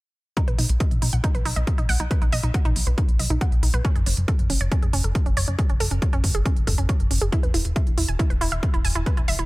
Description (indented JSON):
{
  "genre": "uplifting trance",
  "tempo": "138 BPM",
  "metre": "4/4",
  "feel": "straight",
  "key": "unclear",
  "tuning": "A4 = 439 Hz",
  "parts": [
    { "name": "wide unison pluck", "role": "arpeggios", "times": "0.4-9.4 s", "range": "C#4 to G#5", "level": "-30 LUFS", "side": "right 3 dB", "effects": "sidechain pumping, tape echo" },
    { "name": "electronic hi-hat", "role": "drums", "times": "0.4-9.5 s", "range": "none", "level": "-29 LUFS", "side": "right 1 dB", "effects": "none" },
    { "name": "electronic kick drum", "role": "drums", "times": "0.4-9.2 s", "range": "none", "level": "-22 LUFS", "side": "equal", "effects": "none" },
    { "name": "plucky analog bass", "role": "bass", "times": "0.5-9.5 s", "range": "E1 to B1", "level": "-23 LUFS", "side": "equal", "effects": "sidechain pumping" }
  ],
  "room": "digital ambience",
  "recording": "none",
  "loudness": "-20 LUFS",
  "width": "side -20 dB against mid",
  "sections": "0.4-9.5 A section",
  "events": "none",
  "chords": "0.4 B; 3.8 F#5; 7.3 N.C."
}